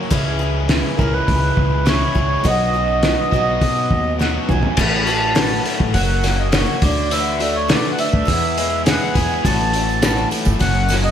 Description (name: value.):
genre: folk rock and heartland rock.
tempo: 103 BPM.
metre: 4/4.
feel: straight.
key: unclear.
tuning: A4 = 440 Hz.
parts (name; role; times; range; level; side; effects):
picked acoustic archtop guitar; accompaniment; 0.0-11.1 s; F#2 to A#4; -25 LUFS; left 4 dB; slapback echo.
overdriven electric guitar; riff; 0.0-11.1 s; E2 to G#4; -24 LUFS; equal; slapback echo.
upright bass; bass; 0.1-11.1 s; F#1 to B2; -21 LUFS; equal; none.
cloth-damped thuddy drum kit; drums; 0.1-11.0 s; crash cymbal, hi-hat, kick drum, snare drum, toms; -20 LUFS; equal; none.
mellow accordion; melody; 1.0-11.1 s; A#4 to A5; -21 LUFS; right 2 dB; none.
tambourine; percussion; 9.5-11.1 s; none; -35 LUFS; right 11 dB; none.
room: light reverb, studio ambience.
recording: none.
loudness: -15 LUFS.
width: side -9 dB against mid.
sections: 0.0-4.8 A section; 4.8-11.1 B section.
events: drum fill 4.2-4.8.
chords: 0.1 C#m; 2.4 Badd9; 4.8 A6; 6.0 F#; 6.8 Dadd9; 8.3 E; 9.4 A6; 10.6 F#.